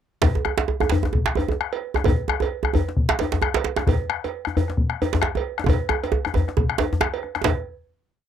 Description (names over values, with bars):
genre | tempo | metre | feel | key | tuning
west african traditional, West African drum ensemble | 133 BPM | 4/4 | swing 56% on 16ths | none | none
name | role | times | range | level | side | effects
bombo | percussion | 0.2-7.7 s | none | -24 LUFS | left 3 dB | none
cowbell | percussion | 0.2-7.7 s | none | -30 LUFS | right 12 dB | none
djembe | percussion | 0.2-7.7 s | none | -24 LUFS | left 3 dB | none
djembe | percussion | 0.2-7.6 s | none | -23 LUFS | right 4 dB | none
room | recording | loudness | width
moderate booth ambience, RT60 0.2 s | dry, close 1970s-style studio recording | -20 LUFS | side -9 dB against mid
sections
0.2-7.5 A section; 7.5-8.3 final hit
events
speeding up 0.2-8.3; drum fill 5.7-7.5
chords
none